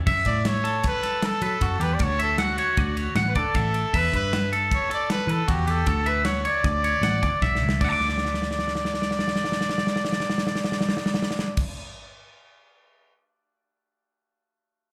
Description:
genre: math rock and midwest emo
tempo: 155 BPM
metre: 5/4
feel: straight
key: D major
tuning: A4 = 440 Hz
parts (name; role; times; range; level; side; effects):
- twangy electric guitar; arpeggios; 0.0-11.7 s; F#4 to D6; -28 LUFS; equal; spring reverb, digital delay
- picked electric bass; bass; 0.1-11.6 s; A1 to F#3; -29 LUFS; equal; none
- modern studio drum kit; drums; 0.1-13.1 s; crash cymbal, kick drum, ride cymbal, snare drum; -29 LUFS; equal; none
- clear trumpet; melody; 0.3-11.6 s; F#4 to D5; -30 LUFS; equal; none
room: light reverb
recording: live gig heard through the venue's PA, club reverb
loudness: -24 LUFS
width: mono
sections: 0.0-7.8 A section; 7.8-11.7 B section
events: drum fill 7.4-7.8, 8.0-11.6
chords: 0.1 F#m7; 2.0 Dmaj7; 3.9 Em; 5.9 Dmaj7; 7.8 N.C.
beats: | 0.07 0.46 0.84 1.23 1.62 | 2.00 2.39 2.78 3.16 3.55 | 3.94 4.32 4.71 5.10 5.48 | 5.87 6.25 6.64 7.03 7.41 | 7.80 8.19 8.57 8.96 9.35 | 9.73 10.12 10.50 10.89 11.27

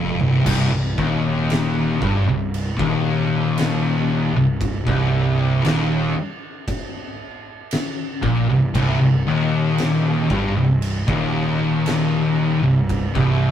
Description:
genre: stoner and doom metal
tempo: 58 BPM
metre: 4/4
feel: straight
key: C minor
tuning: A4 = 440 Hz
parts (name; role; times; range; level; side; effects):
- thick fuzz guitar; riff; 0.0-13.5 s; C2 to Bb2; -22 LUFS; left 3 dB; distortion
- thick fuzz guitar; riff; 0.0-13.5 s; C2 to Bb2; -21 LUFS; right 2 dB; distortion
- fuzz fingered electric bass; bass; 0.0-13.5 s; C1 to Bb1; -26 LUFS; right 1 dB; overdrive
- oversized low-tuned drum kit; drums; 0.2-13.4 s; crash cymbal, kick drum, snare drum, toms; -27 LUFS; equal; none
- scooped high-gain guitar; riff; 0.5-13.5 s; C2 to Bb2; -26 LUFS; left 1 dB; distortion
room: wet booth ambience, RT60 0.2 s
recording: rough rehearsal-room recording, tube saturation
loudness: -17 LUFS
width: side -10 dB against mid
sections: 0.5-13.5 A section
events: drum fill 0.0-0.5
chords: 0.5 Cm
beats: | 0.46 1.50 2.53 3.57 | 4.61 5.64 6.67 7.71 | 8.75 9.78 10.82 11.86 | 12.89

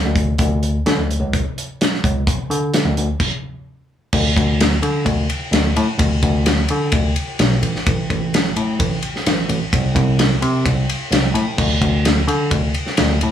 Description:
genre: quiet-loud alternative rock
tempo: 129 BPM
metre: 4/4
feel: straight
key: unclear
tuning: A4 = 439 Hz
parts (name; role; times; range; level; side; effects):
- bell-like tine electric piano; bass; 0.0-13.3 s; A1 to D3; -18 LUFS; equal; none
- big rock drum kit; drums; 0.2-13.3 s; crash cymbal, hi-hat, kick drum, ride cymbal, snare drum; -18 LUFS; equal; none
room: light reverb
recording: small room ambience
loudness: -16 LUFS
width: side -10 dB against mid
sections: 0.0-4.1 A section; 4.1-13.3 B section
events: stop 3.2-4.1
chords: none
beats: | 0.39 0.86 1.33 1.80 | 2.27 2.74 3.21 3.67 | 4.14 4.61 5.08 5.54 | 6.01 6.47 6.94 7.41 | 7.87 8.34 8.80 9.27 | 9.73 10.20 10.66 11.13 | 11.60 12.06 12.53 12.99

